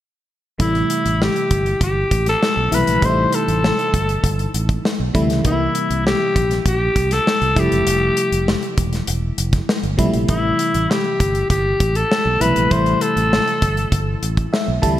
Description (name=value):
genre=polished 1980s jazz-funk pop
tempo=99 BPM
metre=4/4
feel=straight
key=A minor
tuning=A4 = 439 Hz
part: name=growling alto saxophone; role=melody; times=0.6-14.2 s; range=E4 to C5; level=-19 LUFS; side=left 1 dB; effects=none
part: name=FM electric piano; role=accompaniment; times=0.6-15.0 s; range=C3 to A5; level=-23 LUFS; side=left 1 dB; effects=analog chorus
part: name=fingered electric bass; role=bass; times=0.6-15.0 s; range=E1 to D2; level=-21 LUFS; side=right 1 dB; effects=none
part: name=modern studio drum kit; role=drums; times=0.6-15.0 s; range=hi-hat, kick drum, snare drum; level=-21 LUFS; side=equal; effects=none
room=moderate lush hall reverb, RT60 1.7 s, small room ambience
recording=bright 1980s-style digital production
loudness=-15 LUFS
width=side -13 dB against mid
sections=0.6-15.0 A section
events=FM electric piano fill 14.2-15.0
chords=0.6 Am7; 5.4 C7; 7.6 Fmaj9; 10.3 Am7